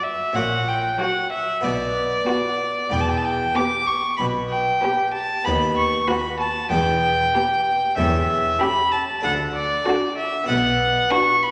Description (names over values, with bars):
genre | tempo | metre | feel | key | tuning
classical, baroque-style concerto movement with solo episodes | 95 BPM | 4/4 | straight | D major from 8.0 s | A4 = 437 Hz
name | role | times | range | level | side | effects
rich symphonic violin section | melody | 0.0-11.5 s | A4 to C#5 | -37 LUFS | equal | none
rich violin | melody | 0.0-11.5 s | D5 to D6 | -23 LUFS | equal | none
rich chamber violin section | second line | 0.0-11.5 s | F#4 to G4 | -30 LUFS | equal | none
harpsichord | accompaniment | 0.0-11.5 s | D2 to B4 | -30 LUFS | equal | none
rich chamber viola section | accompaniment | 0.0-11.5 s | F#3 to D4 | -35 LUFS | equal | none
rich chamber double bass section | bass | 0.4-11.0 s | E1 to D#2 | -34 LUFS | equal | none
warm chamber cello section | bass | 0.4-11.0 s | D2 to B2 | -32 LUFS | equal | none
room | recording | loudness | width
wet scoring stage reverb, RT60 2.0 s | none | -21 LUFS | mono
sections
0.0-11.5 A section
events
none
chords
0.4 F#/A#; 1.6 Bm; 2.9 Em; 5.5 B/D#; 6.7 Em; 8.0 A7/E; 9.2 D; 10.5 Bm